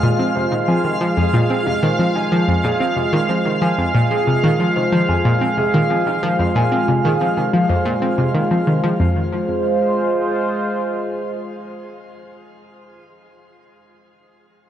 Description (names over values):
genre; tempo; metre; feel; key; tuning
ambient, sequencer-driven space music; 92 BPM; 4/4; straight; F minor; A4 = 440 Hz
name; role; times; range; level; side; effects
sweeping resonant pad; sustained chords; 0.0-12.4 s; Ab3 to F5; -20 LUFS; equal; chorus, shimmer reverb
concert harp; arpeggios; 0.0-11.5 s; F4 to C6; -23 LUFS; right 3 dB; auto-pan, analog delay, shimmer reverb
analog pluck; riff; 0.0-9.3 s; F2 to C4; -18 LUFS; left 1 dB; chorus, analog delay, shimmer reverb
twinkling granular texture; texture; 0.0-9.0 s; F5; -32 LUFS; right 1 dB; built-in reverb, shimmer reverb
room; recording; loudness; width
wet plate reverb, RT60 2.9 s; worn, warbling old tape, cassette tape, warbly pitch drift; -15 LUFS; side -10 dB against mid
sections
0.0-9.0 A section; 9.0-11.6 B section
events
none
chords
0.0 Fm